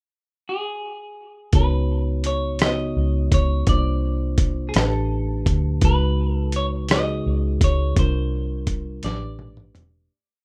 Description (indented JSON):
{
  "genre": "slow six-eight R&B",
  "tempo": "56 BPM (dotted quarters)",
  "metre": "6/8",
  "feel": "straight",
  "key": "unclear",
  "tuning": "A4 = 441 Hz",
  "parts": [
    { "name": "semi-hollow electric guitar", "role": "melody", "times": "0.5-9.8 s", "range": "G#4 to D#5", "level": "-31 LUFS", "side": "equal", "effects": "plate reverb" },
    { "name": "mellow tine electric piano", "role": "accompaniment", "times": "1.5-10.1 s", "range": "A2 to C#5", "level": "-30 LUFS", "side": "equal", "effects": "plate reverb" },
    { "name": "vintage muted fingered electric bass", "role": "bass", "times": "1.5-10.1 s", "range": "E1 to D2", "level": "-25 LUFS", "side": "equal", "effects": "none" },
    { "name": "dusty soul sampler-style drum kit", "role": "drums", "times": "1.5-9.9 s", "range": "hi-hat, kick drum, rim click, snare drum, toms", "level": "-23 LUFS", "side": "equal", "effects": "overdrive" }
  ],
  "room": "light reverb",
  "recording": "rough home demo mix",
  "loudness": "-22 LUFS",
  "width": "mono",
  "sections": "0.0-1.5 pickup bar; 1.5-10.1 verse",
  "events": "fade-out 8.0-10.1; drum fill 9.0-10.1",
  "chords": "0.0 N.C.; 1.5 C#9sus4; 3.7 C9sus4; 4.8 A9sus4; 5.8 C#9sus4; 8.0 C9sus4; 9.0 A9sus4"
}